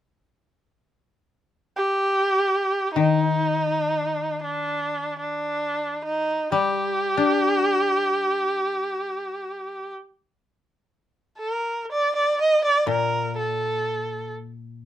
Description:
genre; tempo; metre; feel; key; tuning
japanese traditional; free time; none; none; G hirajoshi; A4 = 440 Hz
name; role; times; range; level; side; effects
rich erhu; melody; 1.8-14.3 s; D4 to Eb5; -22 LUFS; right 1 dB; none
koto; accompaniment; 3.0-14.9 s; Bb2 to D4; -26 LUFS; left 6 dB; none
room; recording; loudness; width
light reverb; none; -21 LUFS; side -11 dB against mid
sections
1.0-10.9 A section; 10.9-14.9 B section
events
none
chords
none

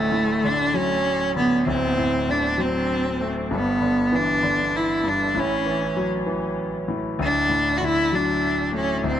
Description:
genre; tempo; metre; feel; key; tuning
pop; 65 BPM (dotted quarters); 6/8; straight; D major; A4 = 438 Hz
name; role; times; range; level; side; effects
clear cello; melody; 0.0-9.2 s; A3 to F#4; -21 LUFS; right 1 dB; analog delay
bright concert grand piano; accompaniment; 0.0-9.2 s; D1 to A3; -25 LUFS; left 2 dB; none
room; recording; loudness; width
light reverb; echo-heavy mix; -20 LUFS; side -10 dB against mid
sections
0.0-9.2 A section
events
none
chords
0.0 D; 3.5 G6; 5.4 A6; 7.2 D

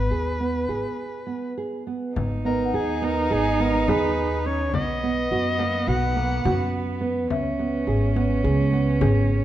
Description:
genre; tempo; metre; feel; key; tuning
contemporary instrumental, chamber music in an uneven meter; 210 BPM (eighths); 9/8; straight; G# minor; A4 = 440 Hz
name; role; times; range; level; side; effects
bright soprano saxophone; melody; 0.0-6.7 s; G#4 to F#5; -28 LUFS; left 2 dB; none
nylon-string guitar; arpeggios; 0.0-9.4 s; A#3 to G#4; -26 LUFS; right 3 dB; none
upright bass; bass; 0.0-9.4 s; G#1 to F#2; -25 LUFS; equal; none
warm cello; second line; 2.2-9.4 s; B3 to D#4; -27 LUFS; right 4 dB; none
frame drum; percussion; 2.2-9.3 s; none; -30 LUFS; left 4 dB; none
celesta; texture; 2.5-9.0 s; D#5 to F#5; -35 LUFS; left 6 dB; none
room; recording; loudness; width
moderate recital hall reverb, RT60 1.7 s; dark, warm production; -21 LUFS; side -12 dB against mid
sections
0.0-2.2 A section; 2.2-9.4 B section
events
break 0.8-2.2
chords
0.0 G#m; 2.2 G#m7; 4.7 Bmaj7; 7.3 C#m7

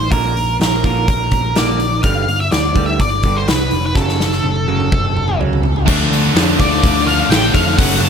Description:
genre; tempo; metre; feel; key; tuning
quiet-loud alternative rock; 125 BPM; 4/4; straight; D minor; A4 = 440 Hz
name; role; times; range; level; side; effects
octave-fuzz lead guitar; melody; 0.0-8.1 s; A4 to A5; -19 LUFS; left 1 dB; distortion, digital delay
twangy electric guitar; arpeggios; 0.0-5.9 s; F#2 to Bb3; -24 LUFS; right 9 dB; none
picked electric bass; bass; 0.0-8.1 s; F1 to F2; -19 LUFS; equal; none
huge arena drum kit; drums; 0.1-8.1 s; crash cymbal, hi-hat, kick drum, snare drum, toms; -16 LUFS; equal; none
rich chamber string section; sustained chords; 5.9-8.1 s; C#4 to F#5; -29 LUFS; left 4 dB; none
scooped high-gain guitar; riff; 5.9-8.1 s; F#2 to D4; -20 LUFS; right 13 dB; distortion
sludgy distorted guitar; riff; 5.9-8.1 s; F#2 to D4; -20 LUFS; left 14 dB; overdrive
tight distorted guitar; riff; 5.9-8.1 s; F#2 to D4; -22 LUFS; equal; distortion
room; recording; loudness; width
small room ambience; none; -13 LUFS; side -7 dB against mid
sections
0.0-5.9 A section; 5.9-8.1 B section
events
drum fill 4.0-5.9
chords
0.1 Bb; 2.0 G5; 4.0 F#m; 5.9 Dm

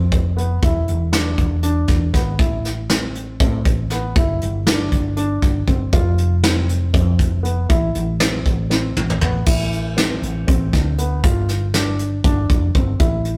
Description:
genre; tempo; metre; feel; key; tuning
progressive instrumental, band music in an uneven meter; 238 BPM (eighths); 7/8; straight; A minor; A4 = 441 Hz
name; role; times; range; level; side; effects
dark baby grand piano; arpeggios; 0.0-13.4 s; B3 to F4; -27 LUFS; equal; none
woody fretless electric bass; bass; 0.0-13.4 s; E1 to A2; -22 LUFS; equal; none
soft brush drum kit; drums; 0.1-13.4 s; crash cymbal, hi-hat, kick drum, snare drum, toms; -21 LUFS; equal; none
room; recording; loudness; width
moderate stone room reverb, RT60 1.0 s; rough rehearsal-room recording, tube saturation; -18 LUFS; mono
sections
0.0-9.5 A section; 9.5-13.4 B section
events
drum fill 8.7-9.5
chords
0.0 F5; 0.6 E7; 2.4 Am; 4.2 G5; 5.9 F5; 7.7 Am; 11.2 G5

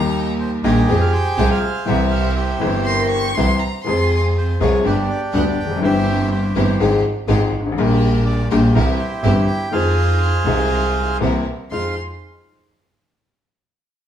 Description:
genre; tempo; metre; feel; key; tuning
tango; 122 BPM; 4/4; rubato; F minor; A4 = 439 Hz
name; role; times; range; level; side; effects
warm violin; second line; 0.0-4.2, 11.7-11.9 s; Bb5 to Db6; -24 LUFS; equal; none
clear upright piano; accompaniment; 0.0-11.9 s; G1 to Ab4; -19 LUFS; left 2 dB; none
clear studio string section; stabs; 0.0-11.9 s; Ab3 to Bb4; -30 LUFS; right 2 dB; none
clear double bass; bass; 0.0-11.9 s; F1 to F2; -20 LUFS; right 1 dB; none
bandoneon; melody; 0.4-12.0 s; D4 to G5; -23 LUFS; right 2 dB; none
vibraphone with hard mallets; second line; 2.9-4.2, 11.7-11.9 s; Bb4 to C5; -26 LUFS; left 2 dB; none
room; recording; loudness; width
wet stone room reverb, RT60 1.0 s; band playing live in one room; -15 LUFS; side -10 dB against mid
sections
0.0-11.7 A section; 11.7-13.7 B section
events
none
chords
0.0 Eb; 0.9 Fmadd9; 1.9 C; 3.9 Fm; 4.8 G; 5.8 C/G; 6.8 Fmadd9/Ab; 7.8 Gm/Bb; 8.7 C; 9.7 Fm7; 11.2 C7; 11.7 Fm7

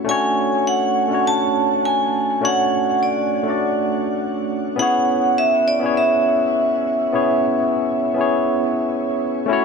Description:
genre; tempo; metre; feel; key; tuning
chillout; 102 BPM; 4/4; straight; unclear; A4 = 440 Hz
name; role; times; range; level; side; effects
barky tine electric piano; accompaniment; 0.0-9.6 s; A3 to D5; -19 LUFS; equal; auto-pan, shimmer reverb, dub echo
vibraphone with hard mallets; melody; 0.1-8.9 s; D5 to A5; -19 LUFS; equal; shimmer reverb, dub echo
room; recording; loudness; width
wet echo chamber reverb, RT60 1.2 s, studio reverb; echo-heavy mix; -16 LUFS; side -5 dB against mid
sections
0.0-9.5 A section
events
none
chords
0.1 Dmaj7; 4.8 C#m7

